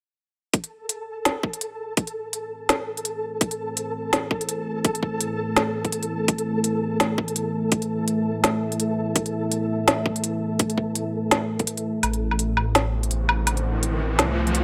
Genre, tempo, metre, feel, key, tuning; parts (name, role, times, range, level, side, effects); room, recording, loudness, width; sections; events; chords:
half-time drum and bass; 167 BPM; 4/4; swing 57% on 16ths, half-time; A minor; A4 = 440 Hz
deep dark ambient pad; sustained chords; 3.1-14.6 s; A3 to E5; -29 LUFS; equal; chorus, built-in reverb, vintage 12-bit sampler grit, sidechain pumping
electronic kick drum; drums; 0.5-11.7 s; -26 LUFS; equal; high-pass filter on kick
organic electronic drum kit; drums; 0.5-14.6 s; hi-hat, snare drum, woodblock; -25 LUFS; equal
flickering grainy texture; texture; 0.8-12.0 s; A4; -33 LUFS; equal; built-in reverb
dark detuned saw bass; bass; 12.0-14.6 s; A1 to C2; -27 LUFS; equal
riser; sound effects; 12.9-14.6 s; -32 LUFS; equal
light reverb; -25 LUFS; mono
0.5-12.0 A section; 12.0-14.6 B section
filter sweep on ambient pad 0.5-12.0; break 11.7-12.0; build-up 12.0-14.6; riser 12.9-14.6
0.5 Amadd9